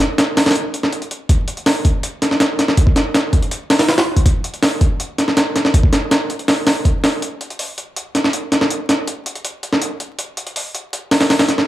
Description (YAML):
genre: drum and bass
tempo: 162 BPM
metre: 4/4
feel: straight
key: none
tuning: none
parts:
  - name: jungle sampler-style drum kit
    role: drums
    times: 0.0-11.7 s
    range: hi-hat, kick drum, snare drum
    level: -14 LUFS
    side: equal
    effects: overdrive
room: little or no reverb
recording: vinyl crackle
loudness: -15 LUFS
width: side -14 dB against mid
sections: 0.0-7.2 A section; 7.2-11.7 B section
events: none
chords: none